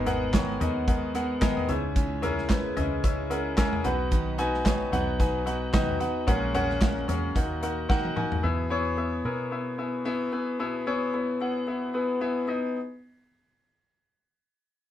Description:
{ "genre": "piano-driven pop", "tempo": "111 BPM", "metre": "4/4", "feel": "swing 56% on 16ths", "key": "unclear", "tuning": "A4 = 445 Hz", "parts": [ { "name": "clear concert grand piano", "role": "accompaniment", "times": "0.0-12.8 s", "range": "G#2 to B5", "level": "-27 LUFS", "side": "left 2 dB", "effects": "none" }, { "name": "picked steel-string acoustic guitar", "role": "riff", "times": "0.0-8.4 s", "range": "G#2 to B4", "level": "-34 LUFS", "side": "right 5 dB", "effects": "none" }, { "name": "vintage muted fingered electric bass", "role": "bass", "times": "0.0-10.3 s", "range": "G#1 to B2", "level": "-33 LUFS", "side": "equal", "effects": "none" }, { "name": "modern studio drum kit", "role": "drums", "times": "0.1-8.4 s", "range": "handclaps, hi-hat, kick drum, snare drum, toms", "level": "-27 LUFS", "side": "equal", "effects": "none" } ], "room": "moderate small room reverb, RT60 0.6 s", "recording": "band playing live in one room", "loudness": "-25 LUFS", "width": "side -11 dB against mid", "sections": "0.0-8.4 A section; 8.4-14.9 B section", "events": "grand piano fill 2.5-4.1; drum fill 7.9-8.4", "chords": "0.0 G#madd9; 1.7 C#m; 3.8 B; 6.3 F#add9/A#; 7.4 D#m; 8.4 E; 12.5 G#m", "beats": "0.34 0.88 1.42 | 1.96 2.50 3.04 3.58 | 4.12 4.66 5.20 5.74 | 6.28 6.82 7.36 7.90 | 8.44 8.98 9.52 10.06 | 10.60 11.14 11.68 12.22 | 12.76" }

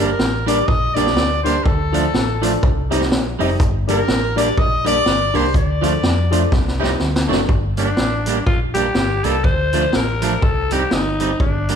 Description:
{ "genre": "ska", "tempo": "123 BPM", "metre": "4/4", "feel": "swing 58% on 8ths", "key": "G minor", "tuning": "A4 = 441 Hz", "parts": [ { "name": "warm trumpet", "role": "melody", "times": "0.0-6.8 s", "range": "A4 to Eb5", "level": "-21 LUFS", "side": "left 1 dB", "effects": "none" }, { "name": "electric guitar at the edge of break-up", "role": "accompaniment", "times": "0.0-11.8 s", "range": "F3 to G4", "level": "-23 LUFS", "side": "right 6 dB", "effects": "dub echo" }, { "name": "dark upright piano", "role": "stabs", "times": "0.0-7.4 s", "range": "D4 to Eb5", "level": "-23 LUFS", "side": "left 4 dB", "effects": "none" }, { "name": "hollow-body short-scale fingered electric bass", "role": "bass", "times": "0.0-11.8 s", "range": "F1 to F2", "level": "-22 LUFS", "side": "equal", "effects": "none" }, { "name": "street-band drum kit", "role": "drums", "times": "0.2-11.8 s", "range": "hi-hat, kick drum, snare drum", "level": "-20 LUFS", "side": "equal", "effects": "none" }, { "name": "growling alto saxophone", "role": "melody", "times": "7.8-11.8 s", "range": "D4 to C5", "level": "-21 LUFS", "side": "left 2 dB", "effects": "none" } ], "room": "moderate large studio reverb, RT60 1.3 s", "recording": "band playing live in one room", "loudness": "-15 LUFS", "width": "side -7 dB against mid", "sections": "0.0-7.5 A section; 7.5-11.8 A section", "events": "trumpet solo 0.0-7.5; drum fill 6.5-7.5; alto saxophone solo 7.5-11.8", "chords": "0.0 Gm; 1.7 Dm; 2.6 Cm; 3.6 Gm; 5.5 Dm; 6.5 Cm; 7.0 D; 7.5 Gm; 9.4 Dm; 10.4 Cm", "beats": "0.19 0.68 1.17 | 1.65 2.14 2.62 3.11 | 3.60 4.08 4.57 5.05 | 5.54 6.03 6.51 7.00 | 7.49 7.98 8.47 8.96 | 9.44 9.93 10.42 10.91 | 11.40" }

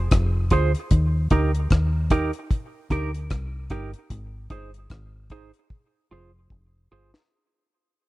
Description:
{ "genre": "roots reggae", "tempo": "75 BPM", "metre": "4/4", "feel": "swing 59% on 16ths", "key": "unclear", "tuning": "A4 = 440 Hz", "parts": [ { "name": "deep dub fingered electric bass", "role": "bass", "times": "0.0-7.1 s", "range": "F1 to Eb2", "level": "-23 LUFS", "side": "equal", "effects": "none" }, { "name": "deep reggae drum kit", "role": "drums", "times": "0.1-7.3 s", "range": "hi-hat, kick drum, rim click, snare drum", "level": "-22 LUFS", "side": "equal", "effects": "none" }, { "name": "semi-hollow electric guitar", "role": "accompaniment", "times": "0.5-7.1 s", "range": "Eb4 to C5", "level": "-28 LUFS", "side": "right 4 dB", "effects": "wide subtle chorus, dub echo" } ], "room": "small room ambience", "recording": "none", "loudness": "-21 LUFS", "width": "side -18 dB against mid", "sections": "0.0-7.3 A section", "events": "fade-out 0.0-7.3; drum fill 5.7-7.3", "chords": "0.0 Fm; 0.9 Eb; 4.1 Ab; 5.7 Fm", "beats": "0.11 | 0.91 1.71 2.50 3.30 | 4.10 4.90 5.70 6.50" }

